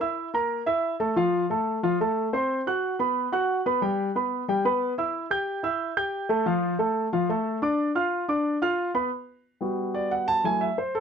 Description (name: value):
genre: jazz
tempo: 181 BPM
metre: 4/4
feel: straight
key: unclear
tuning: A4 = 441 Hz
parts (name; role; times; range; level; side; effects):
- warm concert grand piano; solo; 0.0-11.0 s; F3 to G6; -24 LUFS; equal; none
room: light reverb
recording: close, detailed microphones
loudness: -24 LUFS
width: side -7 dB against mid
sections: 0.0-9.1 A section; 9.1-11.0 B section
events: grand piano solo 9.1-11.0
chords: 0.0 A5; 1.2 F; 2.5 B5; 3.8 Em; 5.1 A5; 6.5 Dm; 7.8 Bdim; 9.1 Gmaj7; 10.4 F#m9b5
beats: 0.17 0.50 0.83 | 1.16 1.49 1.82 2.16 | 2.49 2.82 3.15 3.48 | 3.81 4.15 4.48 4.81 | 5.14 5.47 5.80 6.14 | 6.47 6.80 7.13 7.46 | 7.79 8.13 8.46 8.79 | 9.12 9.45 9.79 10.12 | 10.45 10.78